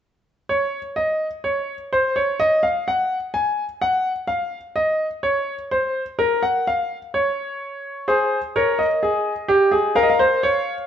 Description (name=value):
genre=classical, baroque-style 4-part fugue for grand piano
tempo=63 BPM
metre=4/4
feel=straight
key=unclear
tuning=A4 = 440 Hz
part: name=clear baby grand piano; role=solo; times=0.5-10.9 s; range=G4 to Ab5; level=-19 LUFS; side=equal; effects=none
room=wet stone room reverb, RT60 1.2 s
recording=nothing above 8.0 kHz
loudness=-18 LUFS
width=side -9 dB against mid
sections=0.5-10.9 A section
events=none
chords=0.5 N.C.; 8.1 Abmaj9; 10.0 Bbm